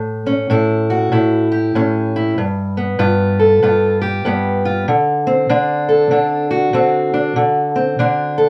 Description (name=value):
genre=blues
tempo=96 BPM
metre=4/4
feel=swing 62% on 8ths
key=D mixolydian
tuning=A4 = 441 Hz
part: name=fingerpicked steel-string acoustic guitar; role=solo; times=0.0-8.5 s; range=G2 to A4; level=-16 LUFS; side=equal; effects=none
room=wet booth ambience, RT60 0.2 s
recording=heard from further back in the room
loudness=-16 LUFS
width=mono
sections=0.0-8.5 A section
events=none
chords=0.0 A7; 2.4 G7; 4.9 D7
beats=0.51 1.13 1.76 | 2.38 3.00 3.63 4.25 | 4.87 5.49 6.12 6.74 | 7.36 7.98